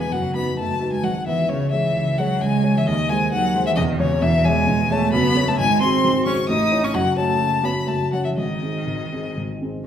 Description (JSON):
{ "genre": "quick classical-period movement for piano trio", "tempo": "132 BPM", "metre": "3/4", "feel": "rubato", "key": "unclear", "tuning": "A4 = 441 Hz", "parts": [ { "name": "rich violin", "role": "melody", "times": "0.0-9.3 s", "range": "C#5 to D#6", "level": "-22 LUFS", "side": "left 4 dB", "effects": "none" }, { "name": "rich cello", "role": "second line", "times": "0.0-9.9 s", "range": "C#3 to D#4", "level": "-24 LUFS", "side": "right 3 dB", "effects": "none" }, { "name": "dark baby grand piano", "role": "accompaniment", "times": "0.0-9.9 s", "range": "E1 to C#5", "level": "-22 LUFS", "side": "equal", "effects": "none" } ], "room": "wet recital hall reverb, RT60 1.3 s", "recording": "recorded in a church or concert hall", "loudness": "-18 LUFS", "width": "side -9 dB against mid", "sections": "0.0-9.9 A section", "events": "none", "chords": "0.1 B/F#; 1.0 E/G#; 1.5 C#m; 2.9 G#/D#; 3.8 C#m/E; 5.1 F#m; 5.6 G#7; 6.5 A; 6.9 F#m; 8.4 G#" }